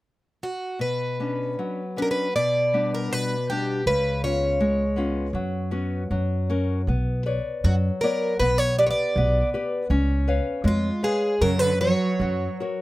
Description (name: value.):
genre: fado-style ballad.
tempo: 79 BPM.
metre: 2/4.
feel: uneven beats, rubato.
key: B harmonic minor.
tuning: A4 = 440 Hz.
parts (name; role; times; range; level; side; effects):
picked plugged-in twelve-string acoustic guitar; melody; 0.4-12.6 s; E#4 to D5; -24 LUFS; right 1 dB; none.
nylon-string guitar; accompaniment; 0.8-12.8 s; B2 to E#5; -26 LUFS; left 2 dB; none.
upright bass; bass; 3.9-12.5 s; B1 to F#2; -25 LUFS; equal; none.
warm cello; second line; 11.4-12.6 s; C#3 to F#3; -26 LUFS; right 4 dB; none.
room: little or no reverb.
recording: close, detailed microphones.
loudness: -21 LUFS.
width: side -17 dB against mid.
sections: 0.8-6.9 A section; 6.9-12.8 B section.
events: none.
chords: 0.0 N.C.; 0.8 Bmadd9; 2.3 G/B; 3.9 C#7; 5.3 F#sus4; 6.1 F#; 6.9 Bmadd9; 8.4 G/B; 9.9 C#7; 11.4 F#sus4; 12.2 F#.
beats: 0.02 | 0.80 1.58 | 2.34 3.11 | 3.87 4.60 | 5.34 6.11 | 6.88 7.64 | 8.41 9.16 | 9.90 10.64 | 11.41 12.20.